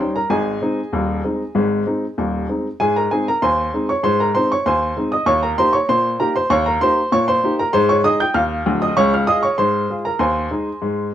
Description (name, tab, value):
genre	ragtime piano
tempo	97 BPM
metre	2/4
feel	straight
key	Ab major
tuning	A4 = 437 Hz
part	clear upright piano	solo	0.0-11.1 s	D1 to G6	-16 LUFS	equal	none
room	moderate studio reverb, RT60 0.5 s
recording	worn, warbling old tape, cassette tape, warbly pitch drift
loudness	-16 LUFS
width	side -11 dB against mid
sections	0.0-2.8 A section; 2.8-11.1 B section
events	none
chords	0.3 Ab; 5.3 Eb7; 7.7 Ab; 9.0 Db; 10.2 Ab/Eb